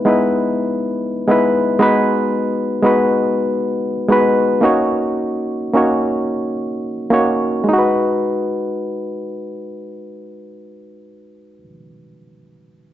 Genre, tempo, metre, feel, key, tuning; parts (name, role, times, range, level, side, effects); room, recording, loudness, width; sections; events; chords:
soul; 73-86 BPM; 4/4; swing 54% on 16ths; G# minor; A4 = 440 Hz
barky reed electric piano; solo; 0.0-12.9 s; G#3 to C#5; -15 LUFS; equal; spring reverb
light reverb; nothing above 7.8 kHz; -15 LUFS; side -12 dB against mid
0.0-7.7 A section; 7.7-11.0 B section
slowing down 1.8-7.7
0.0 Emaj7; 1.8 G#m7; 4.6 D#m7; 7.7 G#m7